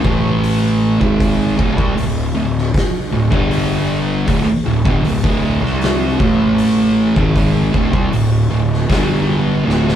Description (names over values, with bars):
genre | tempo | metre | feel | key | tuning
stoner and doom metal | 78 BPM | 4/4 | straight | unclear | A4 = 440 Hz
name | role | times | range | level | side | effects
thick fuzz guitar | riff | 0.0-10.0 s | D2 to C4 | -15 LUFS | right 1 dB | distortion
fuzz picked electric bass | bass | 0.0-10.0 s | D1 to C2 | -21 LUFS | equal | overdrive
oversized low-tuned drum kit | drums | 0.0-10.0 s | hi-hat, kick drum, snare drum | -19 LUFS | equal | none
room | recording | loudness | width
moderate stone room reverb, RT60 1.2 s | band playing live in one room | -13 LUFS | side -10 dB against mid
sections
0.0-10.0 A section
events
drum fill 9.7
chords
0.0 A5; 1.0 D5; 3.3 G5; 4.3 D5; 6.2 A5; 7.2 D5; 8.9 G5